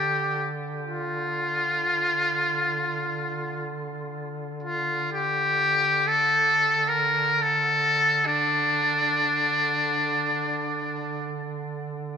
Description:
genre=caucasian folk, Caucasian lament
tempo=free time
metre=none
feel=none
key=D minor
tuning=A4 = 440 Hz
part: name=trumpet with metal mute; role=melody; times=0.0-11.4 s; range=D4 to Bb4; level=-23 LUFS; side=equal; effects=none
part: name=mellow duduk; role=drone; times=0.0-12.2 s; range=D3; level=-33 LUFS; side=right 1 dB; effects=none
room=moderate cathedral reverb, RT60 6.9 s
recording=minimal, uncompressed stereo recording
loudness=-22 LUFS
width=side -7 dB against mid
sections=0.0-12.2 A section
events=none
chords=none

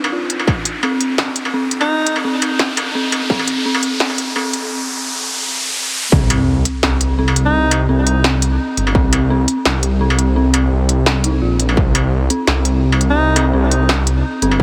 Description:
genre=half-time drum and bass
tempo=170 BPM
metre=4/4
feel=swing 53% on 16ths, half-time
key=unclear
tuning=A4 = 440 Hz
part: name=dark detuned synth bell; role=arpeggios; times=0.0-14.6 s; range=C4 to F4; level=-23 LUFS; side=equal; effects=chorus, tape echo
part: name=industrial drum kit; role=drums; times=0.0-14.6 s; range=hi-hat, snare drum, struck metal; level=-22 LUFS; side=equal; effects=none
part: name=riser and sub drop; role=sound effects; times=0.0-7.5 s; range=none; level=-24 LUFS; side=equal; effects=none
part: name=electronic kick drum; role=drums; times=0.5-0.6, 3.3-3.4, 6.1-6.2, 8.9-9.0, 11.8, 14.6 s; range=none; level=-18 LUFS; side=equal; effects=distortion
part: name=clear alto saxophone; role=melody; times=1.8-2.2, 7.5-7.8, 13.1-13.5 s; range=Eb4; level=-23 LUFS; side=equal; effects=digital delay
part: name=dark detuned saw bass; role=bass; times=6.1-14.6 s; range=G1 to C2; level=-18 LUFS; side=equal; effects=tube saturation
room=light reverb, digital ambience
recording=heavily compressed radio sound, high-pass filter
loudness=-16 LUFS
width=mono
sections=0.0-6.1 A section; 6.1-14.6 B section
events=build-up 0.0-6.1; riser 0.0-6.1; filter sweep 0.0-6.1; drop 6.1-14.6; impact 6.1-7.5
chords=0.0 Cmadd9; 6.1 Cm

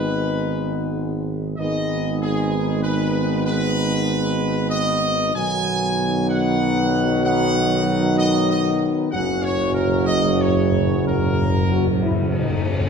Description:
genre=classical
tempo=95 BPM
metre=3/4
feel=straight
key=B major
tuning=A4 = 440 Hz
part: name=bright trumpet section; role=melody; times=0.0-12.7 s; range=G#4 to G#5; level=-24 LUFS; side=right 1 dB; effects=none
part: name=mellow French horn section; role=sustained chords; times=0.0-12.9 s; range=B3 to F#4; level=-24 LUFS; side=left 5 dB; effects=none
part: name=warm trombone section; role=sustained chords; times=0.0-12.7 s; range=C#3 to G#3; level=-25 LUFS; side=right 2 dB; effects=none
part: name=dark tuba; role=bass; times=0.0-12.7 s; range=F#1 to B1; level=-24 LUFS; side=right 4 dB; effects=none
part: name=timpani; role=percussion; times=9.1-12.9 s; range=F#2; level=-23 LUFS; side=left 2 dB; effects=none
room=wet concert hall reverb, RT60 1.8 s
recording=none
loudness=-18 LUFS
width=side -6 dB against mid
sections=0.0-12.9 A section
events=timpani fill 9.1-12.9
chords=0.0 G#m; 5.3 B; 9.1 F#

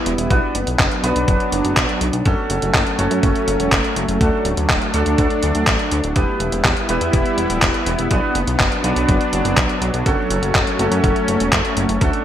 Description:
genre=italo disco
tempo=123 BPM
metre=4/4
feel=straight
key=unclear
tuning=A4 = 444 Hz
part: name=lush unison pad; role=sustained chords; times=0.0-12.2 s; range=F#3 to E4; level=-21 LUFS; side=equal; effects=chorus
part: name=clear baby grand piano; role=stabs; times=0.0-12.2 s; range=A3 to B4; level=-23 LUFS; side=right 1 dB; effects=lush chorus, ping-pong delay
part: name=chorused synth bass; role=bass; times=0.1-12.1 s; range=D1 to F#2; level=-22 LUFS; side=equal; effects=tube saturation
part: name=detuned 8-bit digital drum machine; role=drums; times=0.1-12.2 s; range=handclaps, hi-hat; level=-20 LUFS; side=equal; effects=gated reverb
part: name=electronic kick drum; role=drums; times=0.3-12.1 s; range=none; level=-20 LUFS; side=equal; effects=none
room=moderate plate reverb, RT60 1.2 s, digital ambience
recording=bright 1980s-style digital production, vinyl crackle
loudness=-15 LUFS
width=side -10 dB against mid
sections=0.0-12.2 A section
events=none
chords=0.3 Bm; 2.3 F#m; 4.2 D; 6.2 Em; 8.1 Bm; 10.1 F#m

